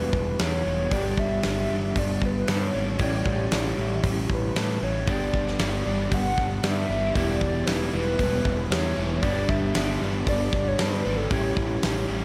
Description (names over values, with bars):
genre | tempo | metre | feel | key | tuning
rock, shoegaze and dream pop | 116 BPM | 4/4 | straight | G lydian | A4 = 440 Hz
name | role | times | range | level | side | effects
pure sine lead | melody | 0.0-12.1 s | G4 to F#5 | -32 LUFS | equal | chorus, slapback echo
overdriven electric guitar | riff | 0.0-12.2 s | E2 to G4 | -34 LUFS | equal | reverse reverb
overdriven semi-hollow guitar | riff | 0.0-12.2 s | G2 to G4 | -33 LUFS | equal | analog chorus
growling picked electric bass | bass | 0.0-12.2 s | E1 to A2 | -31 LUFS | equal | overdrive
big rock drum kit | drums | 0.1-11.9 s | hi-hat, kick drum, snare drum | -31 LUFS | equal | none
overdriven electric guitar | riff | 5.1-12.2 s | G2 to E4 | -36 LUFS | equal | none
room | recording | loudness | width
light reverb | none | -25 LUFS | mono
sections
0.0-12.2 A section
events
none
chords
0.0 Em; 0.9 G; 3.0 A7sus4; 5.1 Gmaj7; 7.2 Em7; 9.2 G; 11.3 A5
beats
0.40 | 0.92 1.44 1.96 2.48 | 3.00 3.52 4.04 4.56 | 5.08 5.60 6.12 6.64 | 7.16 7.67 8.19 8.71 | 9.23 9.75 10.27 10.79 | 11.31 11.83